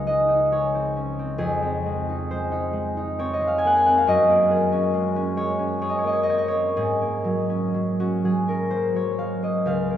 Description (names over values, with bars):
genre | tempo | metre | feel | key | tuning
classical, solo harp piece | 61-71 BPM | 3/4 | rubato | unclear | A4 = 440 Hz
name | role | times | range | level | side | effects
concert harp | solo | 0.0-10.0 s | Db2 to Ab5 | -20 LUFS | equal | none
room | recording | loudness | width
wet cathedral reverb, RT60 5.4 s | heard from further back in the room | -20 LUFS | side -10 dB against mid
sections
0.0-10.0 A section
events
none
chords
0.0 Dbmaj9; 1.4 Fm7; 4.1 Gb69; 6.8 Ab9sus4